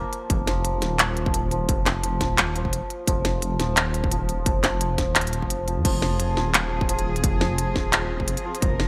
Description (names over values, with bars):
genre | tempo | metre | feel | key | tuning
half-time drum and bass | 173 BPM | 4/4 | swing 55% on 16ths, half-time | F minor | A4 = 440 Hz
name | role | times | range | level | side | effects
santur | arpeggios | 0.0-8.9 s | F3 to Bb3 | -31 LUFS | equal | digital delay
dark detuned saw bass | bass | 0.0-8.9 s | Eb1 to F2 | -28 LUFS | equal | none
industrial drum kit | drums | 0.1-8.9 s | crash cymbal, handclaps, hi-hat, snare drum | -26 LUFS | equal | none
electronic kick drum | drums | 0.3-8.7 s | none | -29 LUFS | equal | distortion
warm chamber cello section | sustained chords | 5.9-8.9 s | F3 to Bb4 | -35 LUFS | equal | sidechain pumping
room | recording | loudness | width
light reverb, digital ambience | bright 1980s-style digital production | -23 LUFS | mono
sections
0.0-5.8 A section; 5.8-8.9 A section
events
drop 0.0-5.8, 5.8-8.9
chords
0.0 Ebsus2; 5.8 Fm